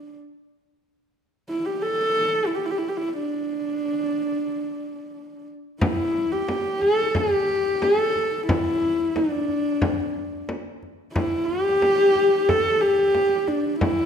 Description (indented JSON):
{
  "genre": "mongolian traditional, Mongolian folk",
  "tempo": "90 BPM",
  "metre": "4/4",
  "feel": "straight",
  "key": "unclear",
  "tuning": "A4 = 442 Hz",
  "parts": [
    { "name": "warm horsehead fiddle", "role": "melody", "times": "0.0-14.1 s", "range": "D4 to A4", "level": "-21 LUFS", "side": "equal", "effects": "none" },
    { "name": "frame drum", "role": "percussion", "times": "5.8-14.0 s", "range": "none", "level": "-27 LUFS", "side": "left 1 dB", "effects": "none" }
  ],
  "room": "moderate recital hall reverb, RT60 1.5 s",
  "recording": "none",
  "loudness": "-20 LUFS",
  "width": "side -7 dB against mid",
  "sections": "0.0-5.8 A section; 5.8-14.1 B section",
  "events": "none",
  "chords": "none"
}